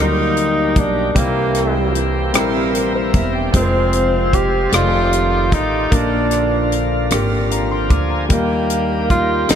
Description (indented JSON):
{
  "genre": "slow gospel",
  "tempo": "50 BPM (dotted quarters)",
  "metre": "6/8",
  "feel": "straight",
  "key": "Eb major",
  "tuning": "A4 = 439 Hz",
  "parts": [
    { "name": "breathy tenor saxophone", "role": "melody", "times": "0.0-9.6 s", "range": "Bb3 to G4", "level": "-19 LUFS", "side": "equal", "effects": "analog delay" },
    { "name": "warm grand piano", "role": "accompaniment", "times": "0.0-9.6 s", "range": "Bb2 to D6", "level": "-21 LUFS", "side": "left 1 dB", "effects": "none" },
    { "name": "bright tonewheel organ", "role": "sustained chords", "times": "0.0-9.6 s", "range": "Db3 to Ab5", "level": "-23 LUFS", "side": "right 2 dB", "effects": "slow rotary speaker, overdrive" },
    { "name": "upright bass", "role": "bass", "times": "0.0-9.6 s", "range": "E1 to Eb2", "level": "-21 LUFS", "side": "equal", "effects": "none" },
    { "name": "tight funk drum kit", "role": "drums", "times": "0.4-9.6 s", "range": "hi-hat, kick drum, rim click, snare drum", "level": "-19 LUFS", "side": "equal", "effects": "none" }
  ],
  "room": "moderate huge ambient reverb, RT60 3.9 s",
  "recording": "dreamy mix soaked in reverb",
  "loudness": "-14 LUFS",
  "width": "side -8 dB against mid",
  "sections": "0.0-9.6 A section",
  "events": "tonewheel organ fill 7.1-8.3",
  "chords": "0.0 Eb; 1.2 C7; 3.5 Fm; 4.7 F13; 5.9 Bb; 8.3 Eb"
}